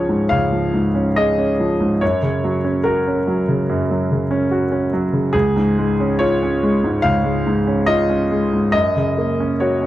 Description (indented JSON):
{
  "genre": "neoclassical minimalist piano",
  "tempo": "71 BPM",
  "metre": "4/4",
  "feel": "rubato",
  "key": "Db major",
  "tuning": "A4 = 439 Hz",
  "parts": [
    { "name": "clear concert grand piano", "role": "solo", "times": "0.0-9.9 s", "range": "Db2 to F5", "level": "-16 LUFS", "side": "equal", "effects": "none" }
  ],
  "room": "little or no reverb",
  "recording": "dry, close 1970s-style studio recording",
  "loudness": "-16 LUFS",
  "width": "side -14 dB against mid",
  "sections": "0.0-9.9 A section",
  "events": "none",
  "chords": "0.0 Db; 2.0 Gb; 5.3 Db; 8.7 Gb"
}